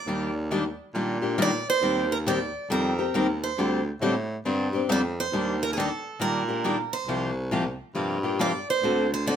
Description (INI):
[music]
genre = acoustic string swing (jazz manouche)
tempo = 137 BPM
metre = 4/4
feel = swing 64% on 8ths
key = unclear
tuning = A4 = 436 Hz
[part]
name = picked steel-string acoustic guitar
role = melody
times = 0.0-9.4 s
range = Ab4 to D5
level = -28 LUFS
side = right 5 dB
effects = none
[part]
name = picked steel-string acoustic guitar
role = accompaniment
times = 0.1-9.4 s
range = C3 to Bb4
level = -26 LUFS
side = left 3 dB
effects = none
[part]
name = warm baritone saxophone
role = bass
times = 0.1-9.4 s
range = C2 to Bb2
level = -29 LUFS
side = right 1 dB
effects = none
[sound]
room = light reverb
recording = minimal, uncompressed stereo recording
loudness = -24 LUFS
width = side -9 dB against mid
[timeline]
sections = 0.0-9.4 A section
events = none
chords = 0.1 Ebmaj7; 1.8 Cm11/Eb; 3.6 D7sus4; 5.3 Ebmaj7; 7.1 C7sus4; 8.8 D7